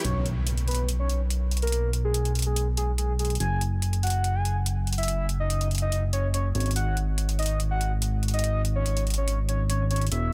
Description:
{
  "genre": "future bass",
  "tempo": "143 BPM",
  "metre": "4/4",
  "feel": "half-time",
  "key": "unclear",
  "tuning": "A4 = 440 Hz",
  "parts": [
    { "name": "soft octave-layered synth lead", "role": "melody", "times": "0.0-10.3 s", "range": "G#4 to G#5", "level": "-34 LUFS", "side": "equal", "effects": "chorus, tape echo" },
    { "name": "fat analog bass", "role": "bass", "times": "0.0-10.3 s", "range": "E1 to B1", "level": "-28 LUFS", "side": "equal", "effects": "none" },
    { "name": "electronic hi-hat", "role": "drums", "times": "0.0-10.2 s", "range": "none", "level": "-35 LUFS", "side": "equal", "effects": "none" },
    { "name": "impact and riser", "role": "sound effects", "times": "0.0-1.7, 10.1-10.3 s", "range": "none", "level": "-39 LUFS", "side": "equal", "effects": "none" }
  ],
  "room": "little or no reverb",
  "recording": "none",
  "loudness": "-26 LUFS",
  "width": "mono",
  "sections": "0.0-10.3 A section",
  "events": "impact 0.0-1.7",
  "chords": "0.0 G#madd11/B; 3.4 Emaj13/F#; 6.5 G#7sus4",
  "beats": "| 0.04 0.47 0.89 1.30 | 1.72 2.14 2.56 2.98 | 3.40 3.82 4.24 4.66 | 5.08 5.50 5.92 6.34 | 6.76 7.18 7.60 8.02 | 8.44 8.86 9.28 9.70 | 10.12"
}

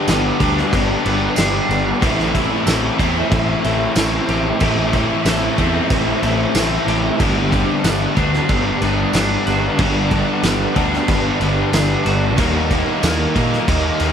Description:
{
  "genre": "rock, shoegaze and dream pop",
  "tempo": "93 BPM",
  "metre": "4/4",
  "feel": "straight",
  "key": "G major",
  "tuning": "A4 = 442 Hz",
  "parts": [
    { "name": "twelve-string electric guitar", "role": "arpeggios", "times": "0.0-14.1 s", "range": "E3 to G4", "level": "-25 LUFS", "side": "equal", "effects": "wide subtle chorus, diffuse ambient delay" },
    { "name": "cranked stack guitar", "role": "riff", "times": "0.0-14.1 s", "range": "G2 to Eb4", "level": "-24 LUFS", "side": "equal", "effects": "overdrive, wide subtle chorus" },
    { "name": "overdriven electric guitar", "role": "riff", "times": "0.0-14.1 s", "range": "G2 to E4", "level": "-22 LUFS", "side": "left 7 dB", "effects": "lush chorus" },
    { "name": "overdriven electric guitar", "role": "riff", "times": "0.0-14.1 s", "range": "G2 to G4", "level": "-22 LUFS", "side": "right 6 dB", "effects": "reverse reverb" },
    { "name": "fuzz picked electric bass", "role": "bass", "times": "0.1-14.1 s", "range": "G1 to Bb2", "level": "-22 LUFS", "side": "equal", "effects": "overdrive" },
    { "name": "loose indie drum kit", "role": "drums", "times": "0.1-14.1 s", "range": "crash cymbal, kick drum, snare drum", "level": "-21 LUFS", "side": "equal", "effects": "none" },
    { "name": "tambourine", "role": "percussion", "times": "0.1-13.2 s", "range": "none", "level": "-29 LUFS", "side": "right 9 dB", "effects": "none" }
  ],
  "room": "wet cathedral reverb, RT60 6.5 s",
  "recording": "dreamy mix soaked in reverb",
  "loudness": "-15 LUFS",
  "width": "side -8 dB against mid",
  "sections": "0.0-14.1 A section",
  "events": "none",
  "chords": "0.0 G; 2.0 Am7; 7.2 Gmaj7; 12.4 Eb",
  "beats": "0.08 0.73 1.38 | 2.02 2.67 3.32 3.96 | 4.61 5.26 5.91 6.55 | 7.20 7.85 8.49 9.14 | 9.79 10.44 11.08 11.73 | 12.38 13.03 13.68"
}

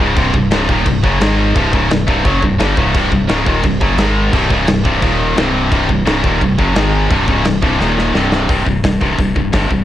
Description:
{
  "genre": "heavy metal",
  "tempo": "173 BPM",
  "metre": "4/4",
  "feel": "straight",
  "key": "C minor",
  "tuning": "A4 = 435 Hz",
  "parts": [
    { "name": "heavy high-gain guitar", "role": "riff", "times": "0.0-9.8 s", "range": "C2 to Ab3", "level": "-18 LUFS", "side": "left 6 dB", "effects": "distortion, cassette tape" },
    { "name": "high-gain distorted guitar", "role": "riff", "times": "0.0-9.8 s", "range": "C2 to Ab3", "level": "-20 LUFS", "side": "right 7 dB", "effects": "distortion, cassette tape" },
    { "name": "tight distorted guitar", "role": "riff", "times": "0.0-8.5 s", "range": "C2 to Ab3", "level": "-19 LUFS", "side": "right 1 dB", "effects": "distortion, cassette tape" },
    { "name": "rubbery square bass", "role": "bass", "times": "0.0-9.8 s", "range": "C1 to Ab1", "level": "-18 LUFS", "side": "equal", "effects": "none" },
    { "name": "modern studio drum kit", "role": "drums", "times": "0.2-9.8 s", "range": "crash cymbal, hi-hat, kick drum, snare drum", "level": "-18 LUFS", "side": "equal", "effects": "cassette tape" }
  ],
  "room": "light reverb, studio ambience",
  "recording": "home recording on cassette",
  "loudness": "-12 LUFS",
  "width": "side -12 dB against mid",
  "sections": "0.0-8.5 A section; 8.5-9.8 B section",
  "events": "drum fill 7.8-8.5",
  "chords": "0.0 Cm; 1.2 Ab5; 1.6 Cm; 4.0 Ab5; 4.3 C5; 5.0 Eb5; 5.4 Cm; 6.8 Ab5; 7.1 C5; 7.8 Eb5; 8.1 C5",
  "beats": "| 0.16 0.51 0.86 1.21 | 1.55 1.90 2.25 2.60 | 2.94 3.29 3.64 3.99 | 4.33 4.68 5.03 5.37 | 5.72 6.07 6.41 6.76 | 7.11 7.45 7.80 8.15 | 8.49 8.84 9.19 9.53"
}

